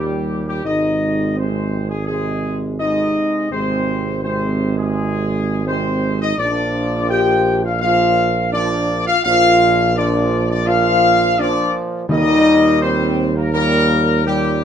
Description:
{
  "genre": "classical",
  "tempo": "84 BPM",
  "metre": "4/4",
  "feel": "straight",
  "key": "unclear",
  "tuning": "A4 = 439 Hz",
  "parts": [
    { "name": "dark trumpet section", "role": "melody", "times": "0.0-14.6 s", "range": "G4 to G5", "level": "-18 LUFS", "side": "left 1 dB", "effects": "none" },
    { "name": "clear trombone section", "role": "sustained chords", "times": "0.0-14.6 s", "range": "Bb2 to Ab3", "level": "-24 LUFS", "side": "right 3 dB", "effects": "none" },
    { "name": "mellow French horn section", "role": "sustained chords", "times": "0.0-14.6 s", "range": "G3 to G4", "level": "-20 LUFS", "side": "left 2 dB", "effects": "none" },
    { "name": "mellow tuba", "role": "bass", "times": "0.0-14.6 s", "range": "Ab1 to Eb2", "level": "-21 LUFS", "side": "right 3 dB", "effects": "none" },
    { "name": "timpani", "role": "percussion", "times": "12.1-13.1 s", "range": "Eb3", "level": "-23 LUFS", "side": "equal", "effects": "none" }
  ],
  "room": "moderate studio reverb, RT60 0.8 s",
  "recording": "none",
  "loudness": "-14 LUFS",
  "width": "side -8 dB against mid",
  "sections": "0.0-14.6 A section",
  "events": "none",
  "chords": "0.0 Eb; 0.7 Ab; 6.4 Bb; 12.1 Eb"
}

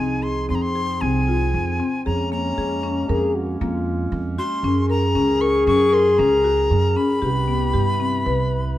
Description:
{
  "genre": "contemporary instrumental, chamber music in an uneven meter",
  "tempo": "116 BPM",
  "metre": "5/4",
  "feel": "straight",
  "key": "F phrygian",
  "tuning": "A4 = 439 Hz",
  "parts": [
    { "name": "breathy bright jazz flute", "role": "melody", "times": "0.0-8.8 s", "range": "Ab5 to Db6", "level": "-26 LUFS", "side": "left 1 dB", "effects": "none" },
    { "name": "warm French horn", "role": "second line", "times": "0.0-8.5 s", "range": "C4 to Ab4", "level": "-22 LUFS", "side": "left 2 dB", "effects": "none" },
    { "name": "mellow woodwind section", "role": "sustained chords", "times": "0.0-8.8 s", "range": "C3 to B4", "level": "-31 LUFS", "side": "right 1 dB", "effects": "none" },
    { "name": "buzzing marimba with medium hard mallets", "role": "arpeggios", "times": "0.0-8.6 s", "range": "Bb3 to B4", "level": "-25 LUFS", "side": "left 3 dB", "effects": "none" },
    { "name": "upright bass", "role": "bass", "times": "0.0-8.8 s", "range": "C2 to G2", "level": "-23 LUFS", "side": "right 2 dB", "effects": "none" }
  ],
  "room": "wet recital hall reverb, RT60 1.6 s",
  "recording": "dark, warm production",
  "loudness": "-18 LUFS",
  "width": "side -14 dB against mid",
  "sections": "0.0-8.8 A section",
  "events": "none",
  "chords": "0.0 Fm7; 2.1 Bbm7/F; 4.6 Gb; 7.2 Cmaj7"
}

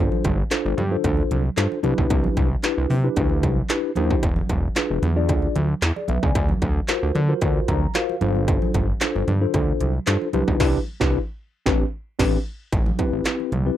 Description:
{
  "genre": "early-eighties boogie funk",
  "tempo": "113 BPM",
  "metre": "4/4",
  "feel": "straight",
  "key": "A minor",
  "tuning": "A4 = 440 Hz",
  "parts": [
    { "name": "mellow tine electric piano", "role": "accompaniment", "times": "0.0-13.8 s", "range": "C4 to A#5", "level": "-24 LUFS", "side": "left 2 dB", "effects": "medium stereo tremolo" },
    { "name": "fat analog bass", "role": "bass", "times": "0.0-13.7 s", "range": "E1 to D3", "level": "-22 LUFS", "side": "equal", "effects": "none" },
    { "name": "congas", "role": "percussion", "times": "0.1-13.7 s", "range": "none", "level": "-31 LUFS", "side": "right 4 dB", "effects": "none" },
    { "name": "industrial drum kit", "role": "drums", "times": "0.2-13.7 s", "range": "crash cymbal, handclaps, hi-hat, kick drum, snare drum", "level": "-23 LUFS", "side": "equal", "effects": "distortion" }
  ],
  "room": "little or no reverb",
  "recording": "dry, close 1970s-style studio recording",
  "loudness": "-19 LUFS",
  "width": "side -12 dB against mid",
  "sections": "0.0-12.7 A section; 12.7-13.8 B section",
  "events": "tine electric piano fill 7.4-8.5; band accent 10.6-12.7",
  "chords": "0.0 G7sus4; 1.8 Cmaj9; 4.2 E7b9; 6.4 D7alt; 8.2 G7sus4; 10.3 Cmaj9; 11.7 Am11; 12.7 Am9"
}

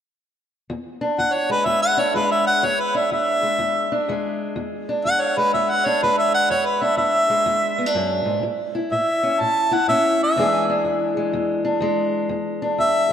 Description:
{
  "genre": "acoustic country blues, solo or duo",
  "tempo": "124 BPM",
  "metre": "4/4",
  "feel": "swing 64% on 8ths",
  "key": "E mixolydian",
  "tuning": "A4 = 443 Hz",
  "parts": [
    { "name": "fingerpicked steel-string acoustic guitar", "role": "accompaniment", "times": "0.7-13.1 s", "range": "E2 to G#4", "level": "-22 LUFS", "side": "equal", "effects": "none" },
    { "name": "warm harmonica", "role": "melody", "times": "1.2-13.1 s", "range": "B4 to A5", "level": "-19 LUFS", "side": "equal", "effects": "none" }
  ],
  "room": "wet lush hall reverb, RT60 2.7 s",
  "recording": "dreamy mix soaked in reverb",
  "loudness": "-18 LUFS",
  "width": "side -9 dB against mid",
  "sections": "0.7-13.1 A section",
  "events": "none",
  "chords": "0.7 E7; 8.4 A; 10.4 E7"
}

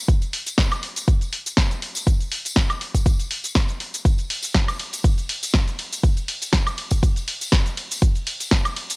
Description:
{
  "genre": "house",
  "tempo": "121 BPM",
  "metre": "4/4",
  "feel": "swing 54% on 16ths",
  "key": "none",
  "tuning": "none",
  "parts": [
    { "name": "electronic kick drum", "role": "drums", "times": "0.1-8.6 s", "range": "none", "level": "-18 LUFS", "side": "equal", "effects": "studio reverb, cassette tape" },
    { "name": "house drum kit", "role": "drums", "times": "0.1-9.0 s", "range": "cabasa, hi-hat, ride cymbal, snare drum, woodblock", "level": "-24 LUFS", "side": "equal", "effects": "sidechain pumping on hats, studio reverb, cassette tape, sidechain pumping on perc, sidechain pumping on cymbals" },
    { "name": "tambourine", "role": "percussion", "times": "0.1-9.0 s", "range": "none", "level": "-32 LUFS", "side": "left 2 dB", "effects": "sidechain pumping on perc" }
  ],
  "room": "digital ambience",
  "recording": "home recording on cassette",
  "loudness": "-19 LUFS",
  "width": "side -28 dB against mid",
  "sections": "0.0-9.0 A section",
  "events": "none",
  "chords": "none"
}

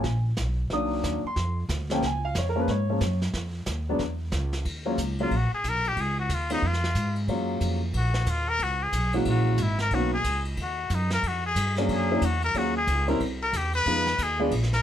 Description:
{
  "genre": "jazz, small-group swing and bop",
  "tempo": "182 BPM",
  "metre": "4/4",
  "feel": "swing 62% on 8ths",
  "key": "Eb minor",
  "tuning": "A4 = 436 Hz",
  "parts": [
    { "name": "warm concert grand piano", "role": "accompaniment", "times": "0.0-14.5 s", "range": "Eb3 to Eb6", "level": "-27 LUFS", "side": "equal", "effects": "none" },
    { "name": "upright bass", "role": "bass", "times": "0.0-14.8 s", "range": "Ab1 to Ab2", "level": "-27 LUFS", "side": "right 1 dB", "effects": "none" },
    { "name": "vintage brush drum kit", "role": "drums", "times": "0.0-14.8 s", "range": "brushed snare drum, hi-hat, kick drum, ride cymbal, snare drum", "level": "-34 LUFS", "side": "equal", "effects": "none" },
    { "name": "trumpet with straight mute", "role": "melody", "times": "5.2-14.8 s", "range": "D#4 to Cb5", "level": "-27 LUFS", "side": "left 2 dB", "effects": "none" }
  ],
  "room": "light reverb",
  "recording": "none",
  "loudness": "-24 LUFS",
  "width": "side -10 dB against mid",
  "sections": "0.0-4.7 A section; 4.7-14.8 A section",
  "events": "muted trumpet solo 4.7-14.8",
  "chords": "0.0 Abmadd9; 0.7 Cm7b5; 1.4 Dm7b5; 2.0 Bbm7; 3.3 Fm7b5; 4.0 Dbm; 4.7 Ebm11; 6.0 Dbadd9; 7.3 Gbmaj7; 8.6 Dbm7; 9.3 Gb9; 9.9 Bmaj9; 11.2 Fmadd9; 11.9 Bb7alt; 12.5 Ebm11; 13.2 C; 13.9 Fm7b5"
}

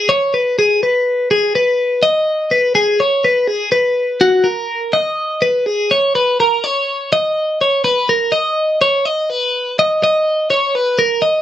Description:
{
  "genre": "rock",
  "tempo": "83 BPM (dotted quarters)",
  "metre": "6/8",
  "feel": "straight",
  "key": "B major",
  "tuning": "A4 = 440 Hz",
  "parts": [
    { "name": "twelve-string electric guitar", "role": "solo", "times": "0.0-11.4 s", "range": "F#4 to D#5", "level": "-13 LUFS", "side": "left 1 dB", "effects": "none" }
  ],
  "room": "wet small room reverb, RT60 0.5 s",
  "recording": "none",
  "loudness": "-13 LUFS",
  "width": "side -11 dB against mid",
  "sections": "0.0-7.1 A section; 7.1-11.4 B section",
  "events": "none",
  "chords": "none"
}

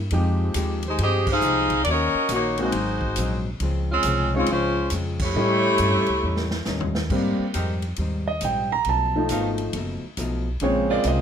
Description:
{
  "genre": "jazz, big band swing",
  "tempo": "137 BPM",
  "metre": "4/4",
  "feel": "swing 65% on 8ths",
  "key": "Ab major",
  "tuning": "A4 = 440 Hz",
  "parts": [
    { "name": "upright bass", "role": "bass", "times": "0.0-11.2 s", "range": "F#1 to A2", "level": "-26 LUFS", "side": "equal", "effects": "none" },
    { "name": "clear concert grand piano", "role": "accompaniment", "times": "0.1-11.2 s", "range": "Db3 to Bb5", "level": "-24 LUFS", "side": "right 1 dB", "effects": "none" },
    { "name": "hollow-body jazz guitar", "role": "accompaniment", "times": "0.1-11.2 s", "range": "Ab2 to G4", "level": "-31 LUFS", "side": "left 3 dB", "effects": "none" },
    { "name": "swinging big-band drum kit", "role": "drums", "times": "0.1-11.2 s", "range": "crash cymbal, hi-hat, kick drum, ride cymbal, snare drum, toms", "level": "-32 LUFS", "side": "equal", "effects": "none" },
    { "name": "clear saxophone section", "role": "melody", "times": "0.9-6.6 s", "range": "Ab3 to F5", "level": "-22 LUFS", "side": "equal", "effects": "none" },
    { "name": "clear saxophone section", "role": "sustained chords", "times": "7.5-11.2 s", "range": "Bb2 to G4", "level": "-30 LUFS", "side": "right 3 dB", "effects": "none" }
  ],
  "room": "moderate large studio reverb, RT60 0.9 s",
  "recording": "none",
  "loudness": "-20 LUFS",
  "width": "side -8 dB against mid",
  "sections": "0.0-7.1 A section; 7.1-11.2 B section",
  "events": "band accent 1.2, 5.1; drum fill 6.2-7.1; grand piano solo 7.1-11.2",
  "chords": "0.1 Fm9; 1.9 Ebm7; 2.7 Ab7; 3.6 Dbmaj7; 5.4 A7#11; 7.1 Abmaj7; 8.9 B7#11; 10.6 Bbm7"
}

